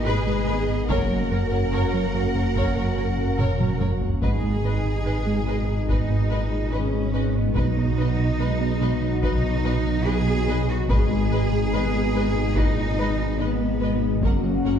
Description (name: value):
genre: cinematic, hybrid orchestral and electronic film score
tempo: 72 BPM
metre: 4/4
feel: straight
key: G# minor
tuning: A4 = 438 Hz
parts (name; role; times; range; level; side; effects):
- warm studio violin section; melody; 0.0-14.7 s; D#5 to F#5; -39 LUFS; left 3 dB; none
- dark French horn section; sustained chords; 0.0-14.8 s; A#2 to C#4; -30 LUFS; left 3 dB; none
- hollow soft pad; sustained chords; 0.0-14.8 s; B2 to F#5; -30 LUFS; equal; chorus
- pure sine sub bass; bass; 0.0-14.8 s; F#1 to B1; -29 LUFS; equal; none
- rich symphonic cello section; bass; 0.0-14.8 s; A#3 to A#4; -29 LUFS; right 1 dB; none
- warm symphonic violin section; second line; 0.1-14.7 s; B4 to C#5; -36 LUFS; left 3 dB; none
- rich symphonic viola section; accompaniment; 0.1-14.7 s; A#4 to B4; -36 LUFS; right 1 dB; none
- smooth synth bass; riff; 0.1-14.8 s; F#2 to B3; -28 LUFS; right 1 dB; none
- clear symphonic double bass section; bass; 0.1-14.8 s; F#1 to B1; -28 LUFS; right 3 dB; none
- taiko ensemble; drums; 0.9-14.8 s; none; -27 LUFS; equal; none
room: wet scoring stage reverb, RT60 1.8 s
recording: heard from further back in the room, nothing above 10.8 kHz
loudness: -20 LUFS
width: side -8 dB against mid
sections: 0.0-14.8 A section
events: drum fill 3.4-4.2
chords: 0.0 G#m; 0.9 F#; 4.2 G#m; 7.6 B; 10.9 G#m; 14.2 F#